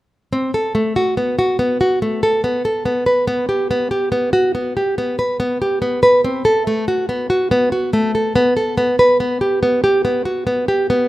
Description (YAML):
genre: contemporary instrumental, contemporary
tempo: 142 BPM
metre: 7/4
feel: straight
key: unclear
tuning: A4 = 440 Hz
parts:
  - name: nylon-string guitar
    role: arpeggios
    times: 0.3-11.1 s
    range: A3 to B4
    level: -15 LUFS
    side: equal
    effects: none
room: light reverb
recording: close, detailed microphones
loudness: -15 LUFS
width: side -16 dB against mid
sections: 0.3-11.1 A section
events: none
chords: none